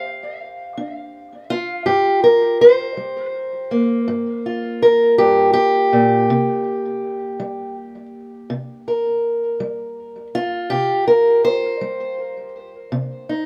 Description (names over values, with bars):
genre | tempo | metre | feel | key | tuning
acoustic country blues, solo or duo | 54 BPM (dotted quarters) | 12/8 | straight | G minor | A4 = 440 Hz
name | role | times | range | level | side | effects
fingerpicked steel-string acoustic guitar | solo | 0.0-13.5 s | G2 to F5 | -18 LUFS | equal | tape echo
room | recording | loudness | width
light reverb | none | -18 LUFS | mono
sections
0.0-13.5 A section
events
none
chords
0.0 Gm7; 6.3 C7(no3)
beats
0.78 | 1.88 2.98 4.08 5.18 | 6.28 7.39 8.50 9.60 | 10.71 11.82 12.93